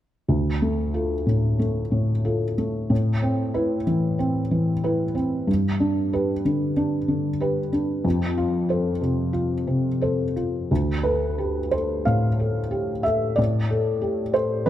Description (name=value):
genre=classical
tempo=92 BPM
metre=4/4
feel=rubato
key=D dorian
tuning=A4 = 440 Hz
part: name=felt-muted upright piano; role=accompaniment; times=0.3-14.7 s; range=D2 to F5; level=-21 LUFS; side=equal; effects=none
room=light reverb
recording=close, detailed microphones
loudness=-21 LUFS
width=side -12 dB against mid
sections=0.3-10.7 A section; 10.7-14.7 B section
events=none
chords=0.3 Dm; 2.9 Amadd9; 5.5 G; 8.0 F; 10.7 Dm; 13.4 N.C.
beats=| 0.29 0.95 1.60 2.25 | 2.91 3.56 4.20 4.84 | 5.48 6.12 6.76 7.40 | 8.05 8.70 9.35 10.01 | 10.70 11.37 12.06 12.72 | 13.38 14.03 14.68